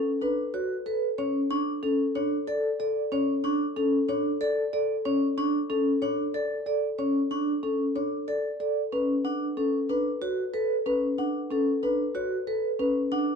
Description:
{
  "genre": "classical, minimalist pattern music",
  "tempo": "186 BPM",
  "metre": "6/4",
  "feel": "straight",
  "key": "unclear",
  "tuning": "A4 = 440 Hz",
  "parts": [
    { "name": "marimba with soft mallets", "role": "melody", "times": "0.0-13.3 s", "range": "A4 to C#6", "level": "-28 LUFS", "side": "left 3 dB", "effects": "none" },
    { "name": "vibraphone with medium mallets", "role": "arpeggios", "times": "0.0-13.3 s", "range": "C#4 to D5", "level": "-27 LUFS", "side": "right 1 dB", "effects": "none" }
  ],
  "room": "moderate studio reverb, RT60 0.9 s",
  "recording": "dark, warm production",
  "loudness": "-25 LUFS",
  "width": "side -6 dB against mid",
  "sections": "0.0-13.4 A section",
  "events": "none",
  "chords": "0.0 Bm9; 1.2 D5; 8.9 Bmadd9"
}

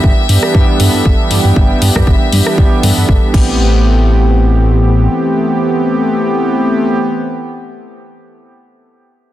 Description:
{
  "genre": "nu-disco, nu disco",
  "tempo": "118 BPM",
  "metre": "4/4",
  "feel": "swing 55% on 16ths",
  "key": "A minor",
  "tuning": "A4 = 441 Hz",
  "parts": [
    { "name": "rich chamber string section", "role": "sustained chords", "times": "0.0-3.3 s", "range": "E5", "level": "-21 LUFS", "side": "left 3 dB", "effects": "sidechain pumping" },
    { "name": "chorused synth bass", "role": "bass", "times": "0.0-5.1 s", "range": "G1 to G2", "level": "-11 LUFS", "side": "equal", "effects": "none" },
    { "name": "electronic kick drum", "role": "drums", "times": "0.0-3.5 s", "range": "none", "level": "-11 LUFS", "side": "equal", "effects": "none" },
    { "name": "warm analog pad", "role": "accompaniment", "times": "0.3-7.0 s", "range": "E3 to A4", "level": "-14 LUFS", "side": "equal", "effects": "chorus, analog delay" },
    { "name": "house drum kit", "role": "drums", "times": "0.3-3.5 s", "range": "crash cymbal, hi-hat, rim click", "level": "-20 LUFS", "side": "left 3 dB", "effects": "none" }
  ],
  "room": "light reverb, digital ambience",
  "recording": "dense, heavily limited modern master",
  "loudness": "-9 LUFS",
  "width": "side -13 dB against mid",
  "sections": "0.0-3.6 A section; 3.6-7.7 B section",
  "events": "none",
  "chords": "0.0 Em7/G; 3.3 Am9"
}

